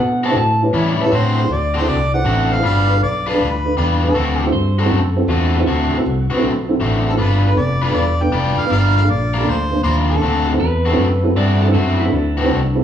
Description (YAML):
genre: electric blues shuffle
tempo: 158 BPM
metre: 4/4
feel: swing 67% on 8ths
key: D mixolydian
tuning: A4 = 439 Hz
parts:
  - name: electric guitar through a small old amp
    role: second line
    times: 0.0-0.6, 4.5-6.8, 10.6-12.8 s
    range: D4 to A5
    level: -23 LUFS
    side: equal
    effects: none
  - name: fingered electric bass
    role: bass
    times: 0.0-12.8 s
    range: E1 to E3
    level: -18 LUFS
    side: equal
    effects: none
  - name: dark upright piano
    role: accompaniment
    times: 0.2-12.8 s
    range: Bb3 to B5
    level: -21 LUFS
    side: right 2 dB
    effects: none
  - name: crunchy overdriven guitar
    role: riff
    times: 0.2-12.6 s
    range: A2 to B4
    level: -21 LUFS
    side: left 3 dB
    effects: none
  - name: mellow harmonica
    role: melody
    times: 1.0-4.5, 7.1-10.6 s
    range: A4 to G5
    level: -22 LUFS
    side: equal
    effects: overdrive
room: moderate large studio reverb, RT60 1.3 s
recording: band playing live in one room, small room ambience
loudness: -14 LUFS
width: side -9 dB against mid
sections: 0.0-1.1 A section; 1.1-12.8 B section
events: clean electric guitar solo 0.0-1.1; upright piano fill 12.5-12.8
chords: 0.4 A7; 1.1 D7; 2.6 G7; 4.1 D7; 7.2 G7; 8.7 Gm7; 10.2 D7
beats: 0.36 0.74 | 1.12 1.50 1.87 2.25 | 2.63 3.01 3.39 3.77 | 4.15 4.53 4.91 5.29 | 5.67 6.04 6.42 6.80 | 7.18 7.56 7.94 8.32 | 8.70 9.08 9.46 9.84 | 10.22 10.60 10.98 11.36 | 11.74 12.12 12.50